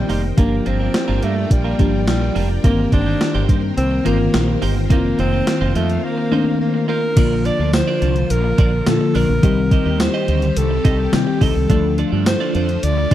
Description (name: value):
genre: 1980s-style pop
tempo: 106 BPM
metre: 4/4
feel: straight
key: unclear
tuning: A4 = 440 Hz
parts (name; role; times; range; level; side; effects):
- bright alto saxophone; melody; 0.0-13.1 s; G3 to D5; -23 LUFS; equal; none
- mellow FM electric piano; accompaniment; 0.0-13.1 s; D3 to A4; -21 LUFS; left 3 dB; chorus
- string machine, violas; sustained chords; 0.0-13.1 s; D3 to G5; -27 LUFS; equal; ensemble chorus
- mellow fretless electric bass; bass; 0.0-13.1 s; F1 to C3; -20 LUFS; equal; analog chorus
- clean electric guitar; riff; 0.1-13.1 s; Bb3 to Eb5; -27 LUFS; right 8 dB; lush chorus
- gated 80s digital drum machine; drums; 0.1-13.1 s; crash cymbal, hi-hat, kick drum, snare drum, tambourine; -17 LUFS; right 1 dB; gated reverb, gated reverb snare, overdrive
room: light reverb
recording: dry, close 1970s-style studio recording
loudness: -15 LUFS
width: side -12 dB against mid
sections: 0.0-7.2 A section; 7.2-13.1 B section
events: none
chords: 0.4 Gm7; 2.6 Cm7/G; 4.9 F7sus4; 7.2 Bb; 9.4 Cm; 11.7 Dm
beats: | 0.38 0.94 1.51 2.08 | 2.64 3.21 3.77 4.34 | 4.91 5.47 6.04 6.60 | 7.17 7.74 8.30 8.87 | 9.43 10.00 10.57 11.13 | 11.70 12.26 12.83